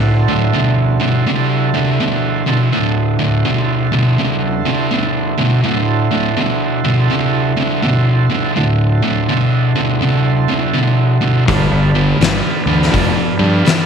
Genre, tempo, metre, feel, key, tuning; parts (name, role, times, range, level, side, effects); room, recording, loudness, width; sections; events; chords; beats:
blues rock power trio and southern rock; 82 BPM; 4/4; swing 64% on 8ths; D mixolydian; A4 = 440 Hz
tonewheel organ; sustained chords; 0.0-13.9 s; D3 to F5; -20 LUFS; right 9 dB; slow rotary speaker
thick fuzz guitar; riff; 0.0-13.9 s; D2 to F3; -14 LUFS; equal; distortion
fuzz fingered electric bass; bass; 11.5-13.6 s; F1 to G2; -17 LUFS; equal; overdrive
oversized low-tuned drum kit; drums; 11.5-13.9 s; hi-hat, kick drum, snare drum; -18 LUFS; left 4 dB
moderate echo chamber reverb, RT60 2.3 s; 1960s-style stereo; -12 LUFS; side -7 dB against mid
0.0-13.9 A section
0.0 D7; 11.5 G7
0.54 1.27 2.00 | 2.73 3.45 4.18 4.91 | 5.64 6.37 7.10 7.83 | 8.56 9.29 10.02 10.74 | 11.47 12.20 12.93 13.65